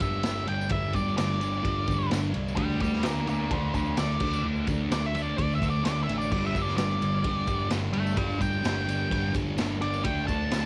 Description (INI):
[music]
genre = garage rock duo or trio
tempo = 128 BPM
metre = 4/4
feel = straight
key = unclear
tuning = A4 = 440 Hz
[part]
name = octave-fuzz lead guitar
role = melody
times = 0.0-10.7 s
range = F4 to A5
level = -34 LUFS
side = equal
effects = distortion
[part]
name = fuzz guitar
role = riff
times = 0.0-10.7 s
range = G2 to D4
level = -32 LUFS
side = equal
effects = distortion
[part]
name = picked electric bass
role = bass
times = 0.0-10.7 s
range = G1 to D2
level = -35 LUFS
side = equal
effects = none
[part]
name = raw garage drum kit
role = drums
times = 0.0-10.6 s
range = crash cymbal, kick drum, ride cymbal, snare drum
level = -34 LUFS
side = equal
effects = cassette tape
[part]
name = tambourine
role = percussion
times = 0.0-10.6 s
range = none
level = -52 LUFS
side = equal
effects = none
[sound]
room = little or no reverb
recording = home recording on cassette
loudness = -28 LUFS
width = mono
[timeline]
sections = 0.0-10.7 A section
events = lead electric guitar solo 0.0-10.7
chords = 0.0 G5; 2.6 Dm; 4.2 D5; 6.3 G5; 10.1 D5